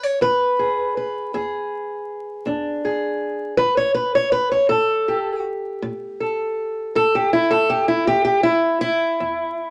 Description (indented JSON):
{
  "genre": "acoustic country blues, solo or duo",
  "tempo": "53 BPM (dotted quarters)",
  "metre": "12/8",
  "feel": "straight",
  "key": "E mixolydian",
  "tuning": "A4 = 441 Hz",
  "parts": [
    { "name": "fingerpicked old ladder-braced acoustic guitar", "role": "solo", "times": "0.0-9.7 s", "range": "E2 to C#5", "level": "-21 LUFS", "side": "equal", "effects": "none" }
  ],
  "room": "moderate studio reverb, RT60 0.6 s",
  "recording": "vinyl crackle",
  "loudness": "-21 LUFS",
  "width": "mono",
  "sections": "0.0-9.7 A section",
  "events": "steel-string acoustic guitar solo 0.0-9.7",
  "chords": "0.0 E7; 3.6 A7sus2; 8.1 E5"
}